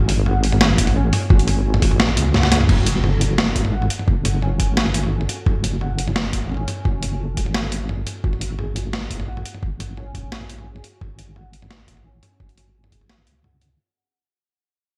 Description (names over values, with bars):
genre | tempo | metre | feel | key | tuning
half-time drum and bass | 173 BPM | 4/4 | half-time | F# minor | A4 = 440 Hz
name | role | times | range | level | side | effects
felt-muted upright piano | arpeggios | 0.0-13.8 s | C#4 to F#5 | -34 LUFS | equal | analog chorus, low-pass filter, digital delay
deep soft wobble bass | bass | 0.0-13.8 s | F#1 to C#2 | -24 LUFS | equal | chorus, tube saturation
boom bap sampler-style drum kit | drums | 0.1-13.7 s | crash cymbal, hi-hat, snare drum, toms | -24 LUFS | equal | gated reverb
electronic kick drum | drums | 0.8-13.0 s | none | -21 LUFS | equal | none
impact | sound effects | 2.7-4.1 s | none | -32 LUFS | equal | none
room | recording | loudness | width
light reverb | bright 1980s-style digital production | -20 LUFS | mono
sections
0.0-2.7 A section; 2.7-13.8 B section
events
drop 0.0-2.7; kick drops out 2.3-2.7; drum fill 2.3-2.7; fade-out 2.7-13.8; impact 2.7-4.1; filter sweep on wobble bass 2.7-13.8; filter sweep on felt piano 2.7-13.8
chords
0.0 F#madd9/G#; 2.7 F#m; 8.2 F#madd9/G#